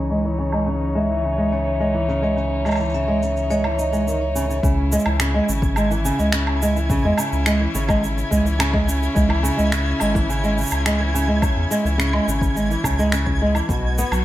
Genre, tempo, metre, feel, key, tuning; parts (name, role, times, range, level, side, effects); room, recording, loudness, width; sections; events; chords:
folktronica; 106 BPM; 4/4; straight; C# minor; A4 = 440 Hz
warm string quartet; sustained chords; 0.0-14.2 s; E3 to C#5; -29 LUFS; left 2 dB
flamenco guitar; arpeggios; 0.0-14.2 s; B2 to D#4; -22 LUFS; right 1 dB; vintage 12-bit sampler grit, low-pass filter, digital delay
warm sub bass; bass; 0.0-14.2 s; G#1 to E2; -23 LUFS; equal
electronic shaker, woodblock and finger snaps; drums; 0.1-14.2 s; -26 LUFS; right 1 dB; overdrive
vibraphone with hard mallets; second line; 1.0-4.7 s; C#5 to E5; -25 LUFS; left 1 dB; auto-pan, digital delay
electronic kick drum; drums; 4.6-13.8 s; -22 LUFS; equal; overdrive
flickering grainy texture; texture; 4.9-14.2 s; G#6; -32 LUFS; right 3 dB; built-in reverb
light reverb, digital ambience; low-pass filter; -18 LUFS; side -14 dB against mid
0.0-4.6 A section; 4.6-14.2 B section
filter sweep on nylon-string guitar 0.0-4.6; filter sweep on string quartet 0.0-4.6; filter sweep 0.0-4.6
0.0 C#madd9; 4.6 C#m; 13.7 B5